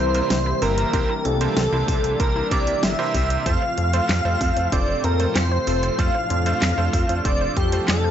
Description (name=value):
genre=synthwave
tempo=95 BPM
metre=4/4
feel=straight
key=unclear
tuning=A4 = 438 Hz
part: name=wide unison lead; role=melody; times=0.0-8.1 s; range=G4 to F5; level=-24 LUFS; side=left 1 dB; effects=tape echo
part: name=airy dreamy lead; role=second line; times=0.0-8.1 s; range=G4 to F5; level=-29 LUFS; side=equal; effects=chorus, tape echo
part: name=warm analog pad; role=sustained chords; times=0.0-8.1 s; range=A2 to F4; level=-29 LUFS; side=equal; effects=chorus, sidechain pumping
part: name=wide unison pluck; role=arpeggios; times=0.0-8.1 s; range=C4 to C5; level=-34 LUFS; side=left 3 dB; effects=none
part: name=bright electric grand piano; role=stabs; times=0.0-7.9 s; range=C3 to E5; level=-29 LUFS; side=right 5 dB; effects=tape echo
part: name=chorused synth bass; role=bass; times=0.0-8.1 s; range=F1 to F2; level=-23 LUFS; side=equal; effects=sidechain pumping
part: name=pop drum kit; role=drums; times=0.1-8.0 s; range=handclaps, hi-hat, snare drum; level=-26 LUFS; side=equal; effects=none
part: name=electronic kick drum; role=drums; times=0.9-7.7 s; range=none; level=-24 LUFS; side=equal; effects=none
room=light reverb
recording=nothing above 7.9 kHz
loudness=-18 LUFS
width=side -10 dB against mid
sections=0.0-8.1 A section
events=none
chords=0.0 C7; 3.5 F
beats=0.30 | 0.94 1.57 2.20 2.83 | 3.46 4.09 4.72 5.36 | 5.99 6.62 7.25 7.88